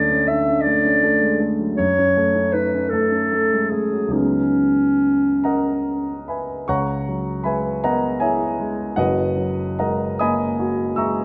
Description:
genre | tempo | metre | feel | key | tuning
classical, impressionist duo for clarinet and grand piano | 44-56 BPM (dotted quarters) | 6/8 | rubato | C# dorian | A4 = 442 Hz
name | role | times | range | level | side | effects
mellow clarinet | melody | 0.0-6.3 s | C#4 to E5 | -20 LUFS | equal | none
warm grand piano | accompaniment | 0.0-11.2 s | F#1 to E6 | -23 LUFS | equal | none
room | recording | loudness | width
moderate recital hall reverb, RT60 1.3 s | none | -20 LUFS | mono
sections
0.0-6.7 A section; 6.7-11.2 B section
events
none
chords
0.0 Dmaj7(no3); 1.8 F#m6; 4.1 C#m11; 9.0 F#add9

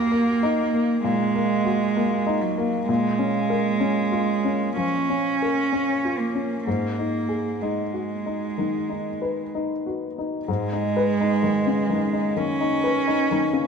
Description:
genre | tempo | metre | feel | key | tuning
neoclassical piano and strings | 63 BPM | 4/4 | rubato | G# dorian | A4 = 440 Hz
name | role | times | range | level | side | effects
rich cello | second line | 0.0-13.7 s | F#3 to C#4 | -23 LUFS | right 5 dB | none
warm upright piano | accompaniment | 0.0-13.7 s | D#2 to B4 | -24 LUFS | left 4 dB | none
room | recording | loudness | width
wet plate reverb, RT60 3.1 s | heard from further back in the room | -21 LUFS | side -6 dB against mid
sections
0.0-10.5 A section; 10.5-13.7 A section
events
none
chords
0.0 D#m; 2.9 A#m7; 6.7 G#m7; 10.5 G#m

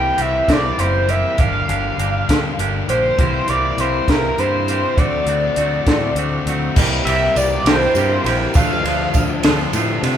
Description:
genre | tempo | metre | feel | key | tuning
indie rock | 67 BPM (dotted quarters) | 6/8 | straight | unclear | A4 = 438 Hz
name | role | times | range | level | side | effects
overdriven synth lead | melody | 0.0-9.2 s | Bb4 to G5 | -20 LUFS | equal | distortion, chorus
crunchy overdriven guitar | riff | 0.0-10.2 s | G2 to F#4 | -24 LUFS | left 6 dB | none
crunchy overdriven guitar | riff | 0.0-10.2 s | E3 to G4 | -24 LUFS | right 8 dB | none
growling picked electric bass | bass | 0.0-10.2 s | F#1 to C3 | -23 LUFS | equal | overdrive
compact cocktail drum kit | drums | 0.2-10.2 s | crash cymbal, hi-hat, kick drum, ride cymbal, snare drum | -18 LUFS | equal | none
overdriven combo organ | sustained chords | 6.8-10.2 s | F4 to Bb5 | -30 LUFS | equal | none
tambourine | percussion | 6.8-10.1 s | none | -35 LUFS | right 7 dB | none
room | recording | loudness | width
moderate large studio reverb, RT60 1.2 s | band playing live in one room | -15 LUFS | side -9 dB against mid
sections
0.0-6.8 A section; 6.8-10.2 B section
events
none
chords
0.0 C5; 1.4 Gm7; 3.2 C5; 5.0 D7; 6.8 C5; 8.6 Dm7

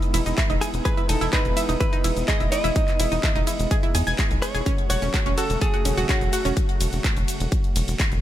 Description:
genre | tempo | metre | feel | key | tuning
progressive house | 126 BPM | 4/4 | straight | E major | A4 = 442 Hz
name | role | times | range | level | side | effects
direct-recorded clean electric guitar | melody | 0.0-6.5 s | F#4 to D#5 | -28 LUFS | equal | sidechain pumping, ping-pong delay
filtered supersaw swell | sustained chords | 0.0-8.2 s | C#3 to F#4 | -31 LUFS | right 1 dB | sidechain pumping
house drum kit | drums | 0.0-8.2 s | handclaps, hi-hat, ride cymbal, shaker | -29 LUFS | equal | sidechain pumping on hats, sidechain pumping on perc, sidechain pumping on cymbals
analog pluck | arpeggios | 0.1-6.5 s | C#4 to G#6 | -28 LUFS | right 2 dB | chorus, sidechain pumping, digital delay
tight sequencer bass | bass | 0.1-8.2 s | E1 to E2 | -25 LUFS | equal | sidechain pumping
electronic kick drum | drums | 0.4-8.1 s | none | -23 LUFS | equal | none
room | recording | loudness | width
little or no reverb | none | -20 LUFS | side -12 dB against mid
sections
0.0-8.2 A section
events
none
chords
0.0 Emaj7; 4.7 F#m/E

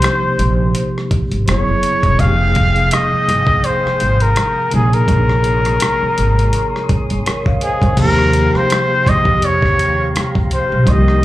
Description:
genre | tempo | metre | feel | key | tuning
R&B, neo-soul | 83 BPM | 4/4 | swing 56% on 16ths | unclear | A4 = 440 Hz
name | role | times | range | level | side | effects
trumpet with straight mute | melody | 0.0-11.2 s | Ab4 to F5 | -17 LUFS | left 1 dB | plate reverb, slapback echo
mellow tine electric piano | accompaniment | 0.0-11.2 s | C3 to F5 | -19 LUFS | right 1 dB | medium stereo tremolo, slapback echo
dusty soul sampler-style drum kit | drums | 0.0-11.2 s | crash cymbal, hi-hat, kick drum, rim click | -18 LUFS | equal | none
upright bass | bass | 0.2-11.2 s | E1 to F2 | -17 LUFS | equal | none
tonewheel organ | sustained chords | 2.2-11.2 s | G4 to Eb6 | -27 LUFS | equal | slow rotary speaker, overdrive, plate reverb
room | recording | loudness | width
light reverb | live gig heard through the venue's PA, club reverb | -12 LUFS | side -15 dB against mid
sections
0.0-8.0 A section; 8.0-11.2 B section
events
none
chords
0.0 Cm7; 1.5 Gbsus2; 2.2 Fm9; 4.7 Bbm11; 8.0 Eb13

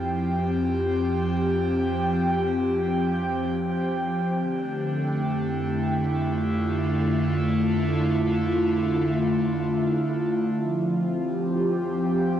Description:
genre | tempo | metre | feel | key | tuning
ambient | free time | none | none | F major | A4 = 440 Hz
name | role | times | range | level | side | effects
airy breathy pad | sustained chords | 0.0-12.4 s | D3 to G5 | -22 LUFS | equal | chorus, cassette tape
deep rumbling drone | bass | 0.0-12.4 s | F2 | -33 LUFS | equal | built-in reverb
room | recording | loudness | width
wet spring reverb, RT60 1.7 s | home recording on cassette | -22 LUFS | side -10 dB against mid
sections
0.0-10.6 A section; 10.6-12.4 B section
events
none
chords
0.0 Fsus2; 4.4 Dm7/F; 10.6 Fsus2

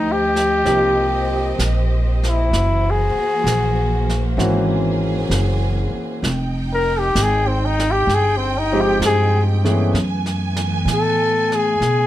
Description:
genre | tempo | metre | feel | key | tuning
jazz | 64 BPM | 4/4 | swing 69% on 8ths | unclear | A4 = 440 Hz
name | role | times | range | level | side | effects
clear flugelhorn | melody | 0.0-12.1 s | C4 to Bb4 | -18 LUFS | left 2 dB | none
warm symphonic string section | sustained chords | 0.0-12.1 s | C#3 to Ab5 | -26 LUFS | right 2 dB | none
upright bass | bass | 0.0-12.1 s | F1 to B2 | -20 LUFS | equal | none
jazz brush drum kit | drums | 0.4-12.1 s | brushed snare drum, hi-hat, snare drum | -28 LUFS | right 2 dB | none
warm concert grand piano | accompaniment | 0.7-10.0 s | Fb3 to Ab4 | -22 LUFS | equal | none
room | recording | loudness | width
light reverb | none | -16 LUFS | side -13 dB against mid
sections
0.0-12.1 A section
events
flugelhorn solo 0.0-12.1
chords
0.0 Eb69; 2.5 Gb7#11; 6.2 Fm9; 9.9 Gbm11

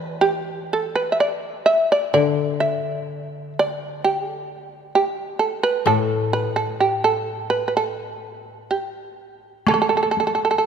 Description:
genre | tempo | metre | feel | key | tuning
japanese traditional, Japanese chamber music | 64 BPM | 2/4 | rubato | A suspended pentatonic | A4 = 440 Hz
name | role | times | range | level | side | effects
shamisen | melody | 0.0-10.7 s | G4 to E5 | -20 LUFS | right 3 dB | none
koto | accompaniment | 0.0-8.7 s | A2 to E3 | -26 LUFS | left 6 dB | none
taiko ensemble | percussion | 9.7-10.4 s | none | -24 LUFS | left 1 dB | none
room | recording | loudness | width
moderate church reverb, RT60 3.3 s | minimal, uncompressed stereo recording | -19 LUFS | side -7 dB against mid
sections
0.0-9.7 A section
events
none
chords
none

